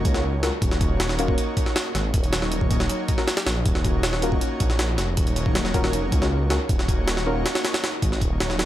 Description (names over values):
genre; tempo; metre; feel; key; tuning
drum and bass, jungle; 158 BPM; 4/4; straight; Eb minor; A4 = 440 Hz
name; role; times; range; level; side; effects
deep mellow chord stab; stabs; 0.0-8.7 s; Db4 to Bb4; -31 LUFS; left 2 dB; chorus, dub echo
detuned saw bass; bass; 0.0-8.7 s; Eb1 to Db2; -25 LUFS; equal; tube saturation
jungle sampler-style drum kit; drums; 0.0-8.7 s; hi-hat, kick drum, snare drum; -23 LUFS; equal; none
airy breathy pad; sustained chords; 0.6-8.7 s; Gb3 to Db5; -29 LUFS; equal; chorus
room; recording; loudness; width
digital ambience; none; -20 LUFS; side -13 dB against mid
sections
0.0-8.7 A section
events
none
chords
0.0 Ebm7